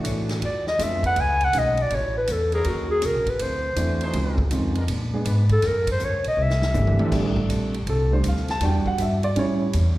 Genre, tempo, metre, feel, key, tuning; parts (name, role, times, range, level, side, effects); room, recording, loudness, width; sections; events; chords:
jazz, big band swing; 161 BPM; 4/4; swing 66% on 8ths; A4 = 440 Hz
vintage hollow-body jazz guitar; accompaniment; 0.0-10.0 s; A2 to D5; -36 LUFS; left 3 dB; slapback echo
warm concert grand piano; accompaniment; 0.0-9.7 s; Eb3 to A5; -26 LUFS; right 2 dB; slapback echo
upright bass; bass; 0.0-10.0 s; Gb1 to Bb2; -24 LUFS; equal
swinging big-band drum kit; drums; 0.0-9.8 s; crash cymbal, hi-hat, kick drum, ride cymbal, snare drum, toms; -31 LUFS; equal
dark clarinet; melody; 0.5-7.1 s; Gb4 to G#5; -23 LUFS; left 1 dB; slapback echo
warm trombone section; sustained chords; 1.0-7.5 s; F3 to C5; -34 LUFS; equal
light reverb; live gig heard through the venue's PA, recital hall reverb; -20 LUFS; side -16 dB against mid
0.0-7.1 A section; 7.1-10.0 A section
clarinet solo 0.0-7.1; drum fill 6.4-7.1; grand piano solo 7.1-10.0
0.4 E7b9; 1.2 Amaj9; 2.7 Ebm7; 3.4 D9; 4.1 Dbmaj9; 4.9 Bb7b9; 5.6 Ebm7; 6.4 C7; 7.1 F6; 8.6 Em7; 9.4 A7